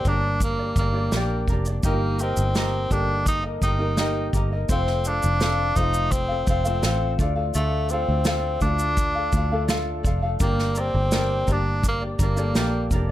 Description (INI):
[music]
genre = acoustic pop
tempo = 84 BPM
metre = 4/4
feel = straight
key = G minor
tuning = A4 = 438 Hz
[part]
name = breathy tenor saxophone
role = melody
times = 0.0-12.9 s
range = A3 to Eb4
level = -26 LUFS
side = equal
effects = plate reverb
[part]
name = clear baby grand piano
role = accompaniment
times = 0.0-13.1 s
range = A3 to Eb5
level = -33 LUFS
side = left 1 dB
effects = plate reverb
[part]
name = ukulele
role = accompaniment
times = 0.0-13.1 s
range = C4 to F5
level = -29 LUFS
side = left 2 dB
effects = plate reverb
[part]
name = fingered electric bass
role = bass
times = 0.1-13.1 s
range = F1 to D2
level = -24 LUFS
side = equal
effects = none
[part]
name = unplugged drum kit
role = drums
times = 0.1-13.1 s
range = kick drum, shaker, snare drum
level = -25 LUFS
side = equal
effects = none
[sound]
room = light reverb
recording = none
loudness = -20 LUFS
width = side -13 dB against mid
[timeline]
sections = 0.0-13.1 A section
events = none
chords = 0.0 Gm; 1.8 Eb/G; 4.7 F; 7.2 Dm; 10.4 Gm